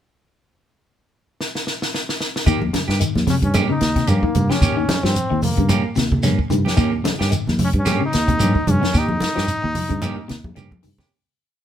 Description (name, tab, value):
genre	afrobeat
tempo	111 BPM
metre	4/4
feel	swing 56% on 16ths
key	Eb mixolydian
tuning	A4 = 443 Hz
part	compact cocktail drum kit	drums	1.4-11.1 s	hi-hat, kick drum, snare drum	-23 LUFS	equal	none
part	electric guitar at the edge of break-up	arpeggios	2.5-11.1 s	C3 to F3	-25 LUFS	left 6 dB	phaser
part	clean electric guitar	stabs	2.5-11.1 s	Bb3 to G4	-26 LUFS	right 6 dB	none
part	fingered electric bass	bass	2.5-11.0 s	Eb2 to G2	-22 LUFS	equal	none
part	shekere	percussion	2.5-11.0 s	none	-25 LUFS	right 1 dB	none
part	congas	percussion	2.6-11.1 s	none	-23 LUFS	equal	none
part	brilliant trombone	melody	3.3-10.6 s	Bb3 to Eb4	-24 LUFS	left 1 dB	none
room	light reverb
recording	band playing live in one room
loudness	-17 LUFS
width	side -10 dB against mid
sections	0.3-2.5 pickup bar; 2.5-11.1 groove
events	drum fill 1.4-2.5, 10.4-11.1; fade-out 8.9-11.1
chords	0.3 N.C.; 2.5 Eb7